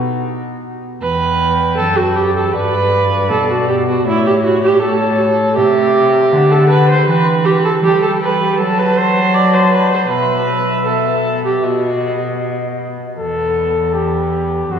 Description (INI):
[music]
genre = classical, renaissance-style consort dance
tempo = 79 BPM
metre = 4/4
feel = straight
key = E minor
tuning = A4 = 440 Hz
[part]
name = warm cornet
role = melody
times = 0.0-14.8 s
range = F#4 to A5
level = -20 LUFS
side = left 4 dB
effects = none
[part]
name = warm viola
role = second line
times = 0.0-14.8 s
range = B3 to D5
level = -15 LUFS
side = right 2 dB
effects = none
[part]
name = warm cello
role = bass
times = 0.0-14.8 s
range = E2 to G3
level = -18 LUFS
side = equal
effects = none
[sound]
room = wet church reverb, RT60 3.2 s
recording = worn, warbling old tape, cassette tape, warbly pitch drift, studio reverb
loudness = -12 LUFS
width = side -7 dB against mid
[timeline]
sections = 0.0-1.0 A section; 1.0-13.2 A section; 13.2-14.8 B section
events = none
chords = 0.0 B; 1.0 Em; 2.5 G; 4.1 A; 5.6 C; 7.1 Em; 8.6 F#dim; 10.1 Bsus4; 13.2 Em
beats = 0.26 | 1.02 1.78 2.54 3.30 | 4.06 4.81 5.56 6.32 | 7.07 7.83 8.59 9.34 | 10.10 10.87 11.64 12.41 | 13.19 13.95 14.71